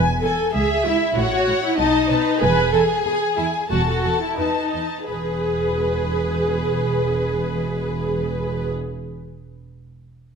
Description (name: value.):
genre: quick classical-period movement for string orchestra.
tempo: 83-97 BPM.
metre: 2/4.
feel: straight.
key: E major.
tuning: A4 = 441 Hz.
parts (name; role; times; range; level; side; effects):
warm studio violin section; melody; 0.0-8.7 s; B4 to A5; -26 LUFS; left 5 dB; none.
warm studio double bass section; bass; 0.0-8.7 s; E1 to C#2; -27 LUFS; right 2 dB; none.
warm studio viola section; accompaniment; 0.2-8.7 s; D#4 to B4; -22 LUFS; right 1 dB; none.
warm studio cello section; bass; 0.2-8.7 s; C#2 to B2; -28 LUFS; right 2 dB; none.
warm studio violin section; second line; 0.5-8.7 s; G#4 to E5; -27 LUFS; left 2 dB; none.
room: moderate recital hall reverb, RT60 1.8 s.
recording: none.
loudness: -18 LUFS.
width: side -6 dB against mid.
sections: 0.0-5.1 A section; 5.1-7.9 B section.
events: slowing down 1.8-5.1.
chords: 0.0 E; 0.5 C#m; 1.2 F#m/A; 1.8 B7; 2.4 E; 3.7 Esus24; 5.1 E.